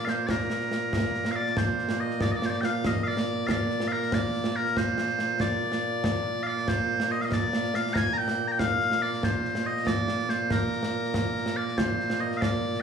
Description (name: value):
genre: scottish traditional, Scottish pipe music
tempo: 94 BPM (dotted quarters)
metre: 6/8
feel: straight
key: Bb major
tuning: A4 = 441 Hz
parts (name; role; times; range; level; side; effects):
- loud bright bagpipes; melody; 0.0-12.8 s; Bb2 to Bb5; -26 LUFS; equal; slapback echo
- concert snare drum and concert bass drum; drums; 0.1-12.8 s; none; -30 LUFS; right 1 dB; slapback echo
room: light reverb, small room ambience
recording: live gig heard through the venue's PA, club reverb, studio reverb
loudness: -25 LUFS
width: side -7 dB against mid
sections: 0.0-1.6 A section; 1.6-11.8 B section; 11.8-12.8 B section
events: none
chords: none